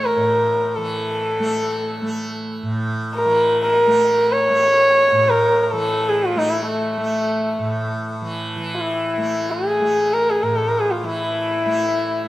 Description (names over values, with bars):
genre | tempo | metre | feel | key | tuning
indian classical, Hindustani | free time | none | none | unclear | A4 = 441 Hz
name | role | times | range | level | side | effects
dark sarangi | melody | 0.0-12.3 s | A3 to C#5 | -17 LUFS | equal | none
tanpura | drone | 0.0-12.3 s | A2 to A3 | -25 LUFS | right 1 dB | none
room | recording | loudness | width
moderate recital hall reverb, RT60 1.5 s | close, detailed microphones | -17 LUFS | side -16 dB against mid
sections
0.0-8.6 A section; 8.6-12.3 A section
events
none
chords
none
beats
free time